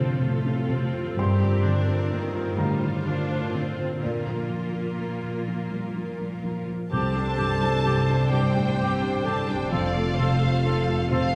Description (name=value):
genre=cinematic, emotional film score for orchestra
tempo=43 BPM (dotted quarters)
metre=6/8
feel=rubato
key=unclear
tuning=A4 = 441 Hz
part: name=rich symphonic violin section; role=melody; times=0.0-11.3 s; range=A4 to A5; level=-36 LUFS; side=equal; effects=none
part: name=clear symphonic viola section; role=accompaniment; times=0.0-11.3 s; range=Eb3 to C5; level=-34 LUFS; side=equal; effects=none
part: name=felt-muted upright piano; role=accompaniment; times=0.0-11.3 s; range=C2 to C6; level=-30 LUFS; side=equal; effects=none
part: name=concert harp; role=arpeggios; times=0.0-11.3 s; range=F2 to D5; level=-32 LUFS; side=equal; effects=none
part: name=clear symphonic cello section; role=bass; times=0.0-11.3 s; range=C2 to Bb2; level=-34 LUFS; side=equal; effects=none
part: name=clear clarinet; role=second line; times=6.9-11.3 s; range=C4 to A4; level=-35 LUFS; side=equal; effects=none
part: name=mellow hollow silver concert flute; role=second line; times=6.9-11.2 s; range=C6 to D6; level=-39 LUFS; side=equal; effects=none
part: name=rich symphonic violin section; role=second line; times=6.9-11.3 s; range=A4 to F5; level=-36 LUFS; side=equal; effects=none
part: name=warm oboe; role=second line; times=6.9-11.3 s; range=G4 to A4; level=-37 LUFS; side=equal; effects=none
part: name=clear symphonic double bass section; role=bass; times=6.9-11.3 s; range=F1 to C2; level=-32 LUFS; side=equal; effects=none
room=wet scoring stage reverb, RT60 1.6 s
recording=heard from further back in the room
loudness=-25 LUFS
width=mono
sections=0.0-6.9 A section; 6.9-11.3 A section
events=none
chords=0.0 F; 1.2 Gm7; 4.0 Bb; 6.9 Csus2; 9.7 F